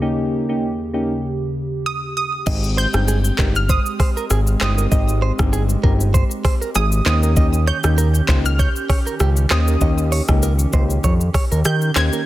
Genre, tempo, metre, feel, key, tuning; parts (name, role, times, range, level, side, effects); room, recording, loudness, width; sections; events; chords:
afrobeats; 98 BPM; 4/4; swing 55% on 16ths; Ab major; A4 = 440 Hz
soft electric-piano-like synth keys; accompaniment; 0.0-12.1 s; Ab3 to G4; -24 LUFS; left 1 dB; chorus
hollow soft pad; sustained chords; 0.0-12.3 s; Eb2 to G4; -28 LUFS; right 2 dB; chorus, sidechain pumping
analog pluck; melody; 1.9-12.3 s; Eb6 to Ab6; -25 LUFS; right 2 dB; chorus, digital delay
direct-recorded clean electric guitar; riff; 2.5-12.2 s; G4 to Eb5; -28 LUFS; right 6 dB; digital delay
fat analog bass; bass; 2.5-12.1 s; G1 to Eb3; -17 LUFS; equal
afro-pop drum kit; drums; 2.5-12.3 s; crash cymbal, handclaps, hi-hat, kick drum, rim click, shaker; -19 LUFS; equal
light reverb, digital ambience; dense, heavily limited modern master; -16 LUFS; side -15 dB against mid
0.0-2.5 A section; 2.5-12.3 B section
0.0 Eb7; 2.5 Abmaj7; 7.1 Eb7